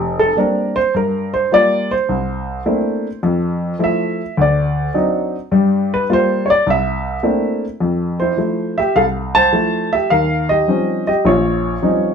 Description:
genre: solo jazz.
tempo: 105 BPM.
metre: 4/4.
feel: swing 68% on 8ths.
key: F major.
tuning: A4 = 439 Hz.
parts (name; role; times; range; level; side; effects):
dark baby grand piano; solo; 0.0-12.1 s; F1 to A5; -14 LUFS; equal; none.
room: moderate studio reverb, RT60 0.7 s.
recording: band playing live in one room.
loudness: -14 LUFS.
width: side -6 dB against mid.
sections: 0.0-7.8 A section; 7.8-12.1 B section.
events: grand piano solo 0.0-7.8.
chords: 0.0 Bb69; 0.9 Gm7; 2.1 C13; 3.2 Fmaj7; 4.4 D7b9; 5.5 Gm7; 6.7 C13; 7.8 Fmaj7; 10.1 Eb13.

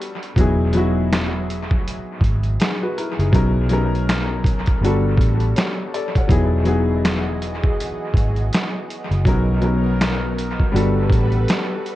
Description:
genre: lo-fi hip hop.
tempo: 81 BPM.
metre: 4/4.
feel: swing 60% on 16ths.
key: E lydian.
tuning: A4 = 440 Hz.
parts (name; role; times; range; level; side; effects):
clear upright piano; accompaniment; 0.0-12.0 s; F#3 to F#5; -22 LUFS; left 2 dB; cassette tape, low-pass filter, dub echo.
trip hop sampler-style drum kit; drums; 0.0-12.0 s; finger snaps, hi-hat, kick drum, snare drum; -20 LUFS; equal; dub echo.
vintage muted fingered electric bass; bass; 0.4-11.4 s; E1 to B1; -20 LUFS; equal; none.
lush unison pad; sustained chords; 6.3-12.0 s; E3 to D#5; -30 LUFS; right 2 dB; chorus, low-pass filter.
room: light reverb.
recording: echo-heavy mix, cassette tape.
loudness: -17 LUFS.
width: side -15 dB against mid.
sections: 0.0-12.0 A section.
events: none.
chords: 0.4 Emaj9; 3.3 Bmaj9; 4.8 Gmaj9; 6.3 Emaj9; 9.3 Bmaj9; 10.7 Gmaj9.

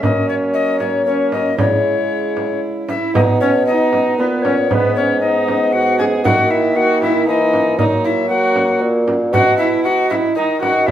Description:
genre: classical, renaissance-style consort dance.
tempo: 116 BPM.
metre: 3/4.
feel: straight.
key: unclear.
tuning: A4 = 445 Hz.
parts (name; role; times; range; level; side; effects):
tenor recorder; melody; 0.0-10.9 s; B4 to G#5; -18 LUFS; left 5 dB; none.
warm viola; second line; 0.0-10.9 s; B3 to G#4; -20 LUFS; right 3 dB; none.
dark bassoon; accompaniment; 0.0-10.9 s; G#3 to D#4; -21 LUFS; right 1 dB; none.
mellow bassoon; bass; 0.0-10.9 s; G#2 to F#3; -20 LUFS; right 1 dB; none.
frame drum; percussion; 0.0-10.9 s; none; -21 LUFS; right 2 dB; none.
room: wet stone room reverb, RT60 0.9 s.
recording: heard from further back in the room.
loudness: -13 LUFS.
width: side -11 dB against mid.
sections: 0.0-3.2 A section; 3.2-10.9 A section.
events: none.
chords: 0.0 F#; 1.6 C#m; 3.2 B; 4.7 G#m; 6.2 D#5; 7.8 F#; 9.3 B.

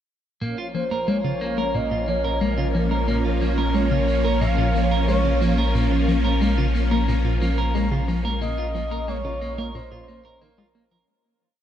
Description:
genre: ambient, sequencer-driven space music.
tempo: 90 BPM.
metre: 4/4.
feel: straight.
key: Bb minor.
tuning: A4 = 440 Hz.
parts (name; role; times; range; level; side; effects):
phased string machine; sustained chords; 0.4-11.0 s; F3 to Db4; -26 LUFS; right 1 dB; ensemble chorus, phaser.
clean electric guitar; arpeggios; 0.4-11.1 s; Bb3 to Bb4; -30 LUFS; right 2 dB; auto-pan, analog delay.
tight sequenced synth; riff; 0.4-11.0 s; Bb2 to Bb3; -27 LUFS; equal; chorus, analog delay.
round analog bass; bass; 0.4-11.0 s; Bb1; -24 LUFS; equal; none.
pulsing gated texture; texture; 0.4-11.1 s; Db4 to Bb4; -35 LUFS; left 3 dB; chorus, built-in reverb.
expressive synth lead; melody; 0.7-10.9 s; Bb4 to F5; -29 LUFS; equal; wide subtle chorus, analog delay.
room: moderate huge ambient reverb, RT60 8.1 s.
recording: none.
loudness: -20 LUFS.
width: side -10 dB against mid.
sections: 0.4-11.1 A section.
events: filter sweep on synth arpeggio sound 0.4-11.1; fade-out 7.5-11.1.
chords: 0.4 Bbm.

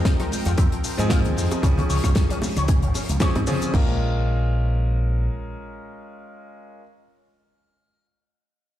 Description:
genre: nu-disco, nu disco.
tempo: 114 BPM.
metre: 4/4.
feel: swing 55% on 16ths.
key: Bb dorian.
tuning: A4 = 441 Hz.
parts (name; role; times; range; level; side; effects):
clear concert grand piano; accompaniment; 0.0-6.8 s; F3 to Bb4; -28 LUFS; equal; vintage 12-bit sampler grit, sidechain pumping, slapback echo.
lush unison pad; sustained chords; 0.0-3.7 s; Bb4 to G5; -39 LUFS; equal; chorus, sidechain pumping.
damped 70s drum kit; drums; 0.1-3.9 s; crash cymbal, hi-hat, rim click, shaker, snare drum; -29 LUFS; left 2 dB; studio ambience.
electronic kick drum; drums; 0.1-3.9 s; none; -20 LUFS; equal; studio ambience.
cabasa, bongos and congas; percussion; 0.1-3.7 s; none; -32 LUFS; right 1 dB; none.
electric guitar with an envelope filter; riff; 0.2-4.0 s; F3 to Db5; -33 LUFS; left 4 dB; analog chorus, slapback echo.
picked electric bass with an envelope filter; bass; 0.5-5.3 s; Ab1 to Db3; -22 LUFS; equal; none.
room: small room ambience.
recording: played on a big sound system in a bare room, large studio reverb.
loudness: -19 LUFS.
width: side -12 dB against mid.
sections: 0.0-3.7 A section; 3.7-7.9 B section.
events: drop 0.0-3.7.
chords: 0.0 Fm7; 1.6 Dbmaj7; 3.7 Bbm7.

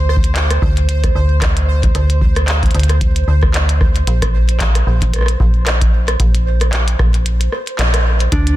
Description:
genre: IDM.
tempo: 113 BPM.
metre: 4/4.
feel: swing 56% on 16ths.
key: unclear.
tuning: A4 = 438 Hz.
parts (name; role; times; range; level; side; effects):
metallic FM bass; bass; 0.0-8.6 s; Bb1 to D2; -14 LUFS; equal; tube saturation.
pulsing gated texture; texture; 0.0-8.3 s; C5; -26 LUFS; right 3 dB; chorus, built-in reverb, sidechain pumping.
glitchy drum kit; drums; 0.1-8.6 s; handclaps, hi-hat, rim click; -21 LUFS; equal; ping-pong delay.
electronic kick drum; drums; 0.2-8.4 s; none; -16 LUFS; equal; none.
concert harp; arpeggios; 8.3-8.6 s; D4; -19 LUFS; right 2 dB; dub echo.
room: digital ambience.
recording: dense, heavily limited modern master.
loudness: -12 LUFS.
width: side -15 dB against mid.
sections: 0.0-8.3 A section.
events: kick drops out 7.3-8.3; band accent 7.8.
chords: 0.0 Csus2/D; 4.1 Bbsus2.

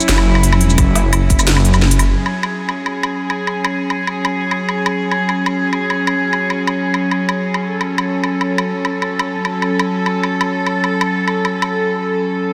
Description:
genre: half-time drum and bass.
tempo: 173 BPM.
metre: 4/4.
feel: half-time.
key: F# minor.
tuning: A4 = 440 Hz.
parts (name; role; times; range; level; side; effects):
warm symphonic cello section; sustained chords; 0.0-12.5 s; F#3 to A4; -20 LUFS; equal; sidechain pumping.
drum and bass drum kit; drums; 0.0-11.7 s; hi-hat, shaker, snare drum, woodblock; -23 LUFS; equal; studio reverb.
dark detuned saw bass; bass; 0.1-2.2 s; F#1; -16 LUFS; equal; none.
electronic kick drum; drums; 0.8-1.4 s; none; -16 LUFS; equal; studio reverb.
room: wet huge ambient reverb, RT60 4.7 s.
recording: dreamy mix soaked in reverb.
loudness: -17 LUFS.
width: mono.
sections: 0.0-2.2 A section; 2.2-12.5 B section.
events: drop 0.0-2.2.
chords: 0.0 F#5.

